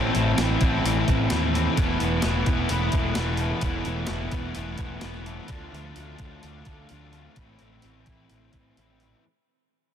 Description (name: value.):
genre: rock, shoegaze and dream pop.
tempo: 129 BPM.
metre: 4/4.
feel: straight.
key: A minor.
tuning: A4 = 439 Hz.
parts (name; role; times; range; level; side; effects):
direct-recorded clean electric guitar; arpeggios; 0.0-9.2 s; F3 to B4; -38 LUFS; right 12 dB; ensemble chorus, digital delay.
crunchy overdriven guitar; riff; 0.0-9.2 s; A2 to F4; -28 LUFS; left 8 dB; analog chorus.
raw garage guitar; riff; 0.0-9.2 s; A2 to F4; -31 LUFS; right 12 dB; overdrive, reverse reverb.
fuzz picked electric bass; bass; 0.0-9.1 s; E1 to D#2; -29 LUFS; equal; overdrive.
crisp 8-bit digital drum machine; drums; 0.1-9.1 s; hi-hat, kick drum, snare drum; -28 LUFS; equal; none.
room: light reverb, digital ambience.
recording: dense, heavily limited modern master.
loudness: -22 LUFS.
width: side -9 dB against mid.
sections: 0.0-9.2 A section.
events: fade-out 0.0-9.2.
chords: 0.0 Am; 1.8 Esus4; 5.5 Dm; 7.4 Amadd9.